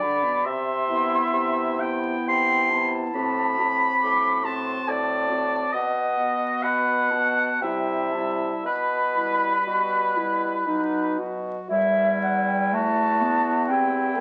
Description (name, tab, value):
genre	classical, slow romantic movement for wind quintet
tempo	56-70 BPM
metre	3/4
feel	rubato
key	E minor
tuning	A4 = 441 Hz
part	mellow silver concert flute	melody	0.0-14.2 s	E5 to D6	-28 LUFS	equal	none
part	warm oboe	second line	0.0-14.2 s	E4 to C6	-27 LUFS	equal	none
part	mellow clarinet	accompaniment	0.0-14.2 s	G3 to F#4	-32 LUFS	equal	none
part	warm French horn	accompaniment	0.0-14.2 s	B2 to G4	-36 LUFS	equal	none
part	clear bassoon	bass	0.5-14.2 s	E2 to C3	-32 LUFS	equal	none
room	wet large studio reverb, RT60 1.1 s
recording	very old 78 rpm record, vinyl crackle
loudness	-23 LUFS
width	mono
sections	0.0-11.7 A section; 11.7-14.2 B section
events	none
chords	0.4 Cmaj7; 3.1 F#dim/A; 5.7 B; 7.6 C; 8.7 Em/B; 10.7 B; 11.7 Em